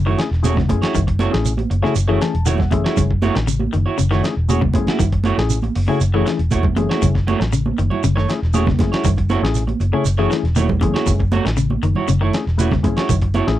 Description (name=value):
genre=afrobeat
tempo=119 BPM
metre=4/4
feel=straight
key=F# dorian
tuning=A4 = 440 Hz
part: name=electric guitar at the edge of break-up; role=arpeggios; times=0.0-13.3 s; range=C#3 to F#3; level=-23 LUFS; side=left 5 dB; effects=none
part: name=vintage muted fingered electric bass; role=bass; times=0.0-13.6 s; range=E1 to A1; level=-19 LUFS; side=equal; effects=none
part: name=electric guitar at the edge of break-up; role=stabs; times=0.1-13.5 s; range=A3 to C#5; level=-23 LUFS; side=right 6 dB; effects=none
part: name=bright reed electric piano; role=accompaniment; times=0.2-13.6 s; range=A3 to A5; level=-23 LUFS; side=left 6 dB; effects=phaser
part: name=dusty soul sampler-style drum kit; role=drums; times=0.2-13.6 s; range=hi-hat, kick drum, snare drum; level=-22 LUFS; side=equal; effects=none
part: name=shekere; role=percussion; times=0.2-13.5 s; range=none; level=-24 LUFS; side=right 5 dB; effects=none
part: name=congas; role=percussion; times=0.4-13.5 s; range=none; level=-24 LUFS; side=right 5 dB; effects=none
room=little or no reverb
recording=dry, close 1970s-style studio recording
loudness=-15 LUFS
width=side -13 dB against mid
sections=0.0-13.6 A section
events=reed electric piano fill 2.0-3.0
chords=0.0 F#m7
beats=0.44 | 0.95 1.46 1.96 2.47 | 2.98 3.48 3.99 4.50 | 5.00 5.51 6.01 6.52 | 7.03 7.53 8.04 8.54 | 9.05 9.55 10.06 10.57 | 11.07 11.58 12.09 12.59 | 13.10